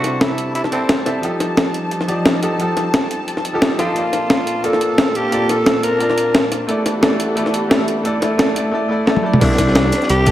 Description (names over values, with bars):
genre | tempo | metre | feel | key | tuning
liquid drum and bass | 176 BPM | 4/4 | swing 54% on 16ths | unclear | A4 = 438 Hz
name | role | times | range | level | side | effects
growling tenor saxophone | melody | 0.0-1.0, 3.8-6.5, 9.4-10.3 s | C4 to Bb4 | -19 LUFS | equal | none
bright grand piano | accompaniment | 0.0-10.3 s | F3 to A5 | -21 LUFS | equal | vintage 12-bit sampler grit
dark studio string section | sustained chords | 0.0-10.3 s | Bb2 to A5 | -24 LUFS | equal | sidechain pumping
breakbeat sampler-style drum kit | drums | 0.0-10.3 s | crash cymbal, hi-hat, shaker, snare drum, toms | -17 LUFS | equal | none
smooth synth bass | bass | 9.4-10.3 s | C2 | -16 LUFS | equal | none
crunchy breakbeat drum kit | drums | 9.4-10.3 s | hi-hat, snare drum | -25 LUFS | equal | high-pass filter on hats, high-pass filter on snare, high-pass filter on room
electronic kick drum | drums | 9.4-10.3 s | none | -18 LUFS | equal | none
room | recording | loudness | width
wet recital hall reverb, RT60 1.4 s, small room ambience | none | -14 LUFS | side -13 dB against mid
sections
0.0-9.4 A section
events
build-up 0.0-9.4; drum fill 9.1-9.4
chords
0.0 C69; 1.2 F9; 4.0 Bbmaj7; 6.7 Em11; 9.4 C69